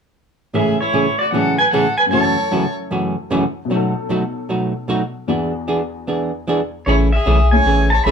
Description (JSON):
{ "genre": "country, western swing", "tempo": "152 BPM", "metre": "4/4", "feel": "swing 67% on 8ths", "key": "A major", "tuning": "A4 = 441 Hz", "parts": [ { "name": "clear fiddle", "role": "second line", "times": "0.5-2.7, 6.9-8.1 s", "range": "E4 to E5", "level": "-24 LUFS", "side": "right 1 dB", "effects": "none" }, { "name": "archtop guitar, miked and amplified", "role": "accompaniment", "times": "0.5-8.1 s", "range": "F#2 to G#4", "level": "-19 LUFS", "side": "right 1 dB", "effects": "none" }, { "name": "honky-tonk upright piano", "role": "accompaniment", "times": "0.5-8.0 s", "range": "E2 to B4", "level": "-25 LUFS", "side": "left 4 dB", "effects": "none" }, { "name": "pedal steel guitar", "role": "melody", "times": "0.6-2.7, 6.9-8.1 s", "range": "C#5 to B5", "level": "-18 LUFS", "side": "equal", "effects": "none" }, { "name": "smooth synth bass", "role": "bass", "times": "6.9-8.1 s", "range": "G#1 to B1", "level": "-15 LUFS", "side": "equal", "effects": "none" } ], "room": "moderate studio reverb, RT60 0.6 s", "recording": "band playing live in one room", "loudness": "-15 LUFS", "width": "side -6 dB against mid", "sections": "0.5-6.9 A section; 6.9-8.1 B section", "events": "none", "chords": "0.5 Amaj7; 2.1 F#m7; 3.7 B7; 5.3 E7; 6.9 Amaj7" }